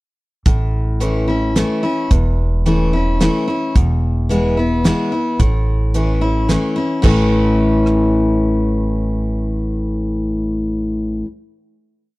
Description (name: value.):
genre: honky-tonk and classic country.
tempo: 109 BPM.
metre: 3/4.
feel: straight.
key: A major.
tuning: A4 = 435 Hz.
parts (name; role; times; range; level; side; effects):
picked steel-string acoustic guitar; accompaniment; 0.5-11.3 s; E2 to E4; -17 LUFS; left 1 dB; none.
upright bass; bass; 0.5-11.2 s; E1 to A1; -18 LUFS; equal; none.
damped 70s drum kit; drums; 0.5-8.0 s; crash cymbal, hi-hat, kick drum, rim click, snare drum; -16 LUFS; right 1 dB; none.
room: small room reverb.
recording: dry, close 1970s-style studio recording.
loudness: -14 LUFS.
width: side -20 dB against mid.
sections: 0.5-7.0 interlude; 7.0-10.3 final chord.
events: none.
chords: 0.5 A; 3.8 E; 5.4 A.